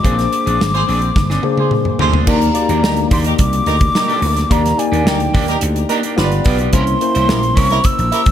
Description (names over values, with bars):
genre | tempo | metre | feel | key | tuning
polished 1980s jazz-funk pop | 108 BPM | 4/4 | straight | Eb major | A4 = 441 Hz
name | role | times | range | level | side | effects
breathy mellow silver concert flute | melody | 0.0-8.3 s | G5 to E6 | -19 LUFS | left 1 dB | ping-pong delay
tine electric piano | accompaniment | 0.0-8.3 s | Bb3 to D5 | -20 LUFS | left 4 dB | medium stereo tremolo, analog chorus
electric guitar at the edge of break-up | riff | 0.0-8.3 s | Bb3 to C5 | -25 LUFS | right 4 dB | wide subtle chorus
vintage slap bass | bass | 0.0-8.3 s | G1 to Eb2 | -18 LUFS | equal | none
modern studio drum kit | drums | 0.0-8.3 s | crash cymbal, hi-hat, kick drum, snare drum, toms | -18 LUFS | equal | gated reverb
warm horn section | second line | 0.7-8.2 s | Eb4 to C5 | -23 LUFS | right 4 dB | ping-pong delay
room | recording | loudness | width
light reverb, studio ambience | none | -12 LUFS | side -10 dB against mid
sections
0.0-2.3 A section; 2.3-8.3 B section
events
band accent 0.0-2.3; drum fill 1.2-2.3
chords
0.0 Bb9; 2.3 Ebmaj7; 6.2 G7; 6.7 C7b9